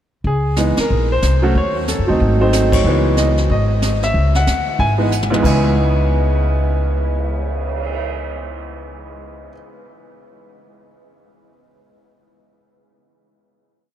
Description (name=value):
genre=jazz piano trio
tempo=185 BPM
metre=4/4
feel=swing 61% on 8ths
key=C# minor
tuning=A4 = 440 Hz
part: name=upright bass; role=bass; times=0.2-9.5 s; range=G#1 to F#2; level=-18 LUFS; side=equal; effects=none
part: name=jazz brush drum kit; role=drums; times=0.2-7.9 s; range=brushed snare drum, crash cymbal, cymbal swell, hi-hat, kick drum, ride cymbal, snare drum, toms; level=-25 LUFS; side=right 1 dB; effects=none
part: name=bright grand piano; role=melody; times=0.3-9.5 s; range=C#2 to G#5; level=-18 LUFS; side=equal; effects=analog delay
room=moderate huge ambient reverb, RT60 8.6 s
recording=dreamy mix soaked in reverb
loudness=-14 LUFS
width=side -11 dB against mid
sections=0.2-5.4 A section; 5.4-8.0 final chord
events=band accent 0.7, 2.7; drum fill 5.1-5.4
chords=0.2 C#m9; 0.9 A#sus2; 1.5 D#dim; 2.2 G#7b9; 2.8 C#m9